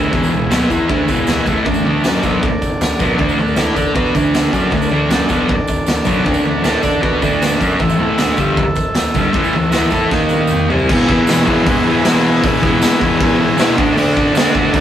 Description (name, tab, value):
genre	garage rock duo or trio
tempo	156 BPM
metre	4/4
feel	straight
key	E mixolydian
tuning	A4 = 439 Hz
part	overdriven combo organ	sustained chords	0.0-14.8 s	D4 to G#5	-22 LUFS	equal	spring reverb
part	thick fuzz guitar	riff	0.0-14.8 s	E2 to D5	-14 LUFS	equal	distortion
part	raw garage drum kit	drums	0.1-14.8 s	crash cymbal, hi-hat, kick drum, snare drum, toms	-18 LUFS	equal	none
part	tambourine	percussion	0.1-14.4 s	none	-32 LUFS	right 4 dB	none
room	moderate studio reverb, RT60 0.6 s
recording	rough rehearsal-room recording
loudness	-12 LUFS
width	side -10 dB against mid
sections	0.0-10.9 A section; 10.9-14.8 B section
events	drum fill 10.1-10.9; transistor combo organ fill 10.1-10.9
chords	0.0 E; 1.7 D5; 7.8 A5; 10.1 D#5; 10.7 G#maj7/B#; 10.9 E; 13.8 D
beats	| 0.12 0.51 0.89 1.27 | 1.65 2.04 2.42 2.80 | 3.19 3.57 3.95 4.33 | 4.72 5.10 5.49 5.87 | 6.26 6.64 7.03 7.41 | 7.80 8.19 8.57 8.96 | 9.35 9.73 10.12 10.50 | 10.89 11.28 11.66 12.04 | 12.43 12.81 13.20 13.59 | 13.97 14.36 14.74